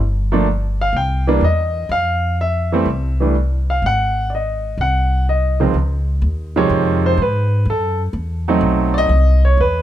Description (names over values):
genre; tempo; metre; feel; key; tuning
jazz piano trio; 125 BPM; 4/4; swing 69% on 8ths; unclear; A4 = 440 Hz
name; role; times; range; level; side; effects
upright bass; bass; 0.0-9.8 s; G1 to Ab2; -17 LUFS; equal; none
clear grand piano; melody; 0.3-9.8 s; Db2 to G5; -17 LUFS; right 1 dB; plate reverb
room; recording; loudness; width
little or no reverb; close, detailed microphones; -15 LUFS; side -12 dB against mid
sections
0.0-5.7 A section; 5.7-9.8 B section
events
none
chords
0.0 G7(no3); 0.9 C; 1.9 Fmaj7(no3); 3.8 Ab7; 5.7 Dbmaj7; 7.7 Gbm7; 8.6 Cb7b9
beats
0.47 0.94 1.43 | 1.91 2.39 2.87 3.35 | 3.83 4.31 4.79 5.27 | 5.75 6.23 6.71 7.19 | 7.67 8.15 8.63 9.11 | 9.59